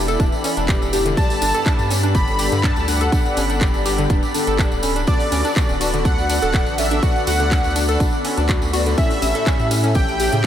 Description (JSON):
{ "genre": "progressive house", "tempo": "123 BPM", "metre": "4/4", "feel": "straight", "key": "D major", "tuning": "A4 = 440 Hz", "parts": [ { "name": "soft supersaw", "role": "stabs", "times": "0.0-10.5 s", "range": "G2 to E5", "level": "-24 LUFS", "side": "left 3 dB", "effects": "ensemble chorus, sidechain pumping, tape echo" }, { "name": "round analog bass", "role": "bass", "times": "0.0-10.5 s", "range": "D1 to A2", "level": "-22 LUFS", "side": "equal", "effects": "sidechain pumping" }, { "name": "drifting glass-harmonics texture", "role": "texture", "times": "0.0-10.5 s", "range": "B5", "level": "-32 LUFS", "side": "right 3 dB", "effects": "chorus, built-in reverb, sidechain pumping" }, { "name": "glassy wavetable pluck", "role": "arpeggios", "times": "0.1-10.5 s", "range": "C#3 to A4", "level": "-24 LUFS", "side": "equal", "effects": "chorus, sidechain pumping, tape echo" }, { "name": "house drum kit", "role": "drums", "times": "0.1-10.5 s", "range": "handclaps, hi-hat, ride cymbal", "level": "-28 LUFS", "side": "right 2 dB", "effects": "none" }, { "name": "tambourine", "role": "percussion", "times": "0.1-10.4 s", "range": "none", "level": "-31 LUFS", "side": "left 3 dB", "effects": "none" }, { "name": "electronic kick drum", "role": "drums", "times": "0.2-10.5 s", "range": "none", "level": "-19 LUFS", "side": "equal", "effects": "none" }, { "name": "wide unison lead", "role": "melody", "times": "1.2-10.5 s", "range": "D5 to B5", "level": "-25 LUFS", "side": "equal", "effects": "sidechain pumping, tape echo" } ], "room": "moderate huge ambient reverb, RT60 8.2 s", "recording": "dreamy mix soaked in reverb", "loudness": "-16 LUFS", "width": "side -10 dB against mid", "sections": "0.0-10.5 A section", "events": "none", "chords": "0.0 Em7; 1.2 Gadd9; 5.1 D6; 9.0 A7", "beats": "0.20 0.69 | 1.17 1.66 2.15 2.64 | 3.12 3.61 4.10 4.59 | 5.08 5.56 6.05 6.54 | 7.03 7.51 8.00 8.49 | 8.98 9.47 9.95 10.44" }